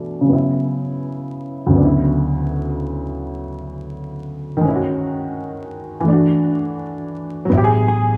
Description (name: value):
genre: hip hop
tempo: 83 BPM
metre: 4/4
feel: swing 65% on 16ths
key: unclear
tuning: A4 = 439 Hz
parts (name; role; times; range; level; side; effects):
- dark upright piano; accompaniment; 0.0-8.2 s; D2 to G#4; -20 LUFS; equal; cassette tape, low-pass filter
- upright bass; bass; 7.5-8.2 s; A1; -19 LUFS; equal; none
- mellow electric guitar; melody; 7.9-8.2 s; G#4; -23 LUFS; equal; low-pass filter
room: light reverb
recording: vinyl crackle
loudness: -19 LUFS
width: mono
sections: 0.0-7.5 A section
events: filter sweep on upright piano 0.0-7.5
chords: 0.3 Bsus24/C#; 4.6 G#7sus4/D#; 6.1 D; 7.5 Asus2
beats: 0.28 1.00 | 1.72 2.44 3.17 3.89 | 4.61 5.34 6.06 6.78 | 7.50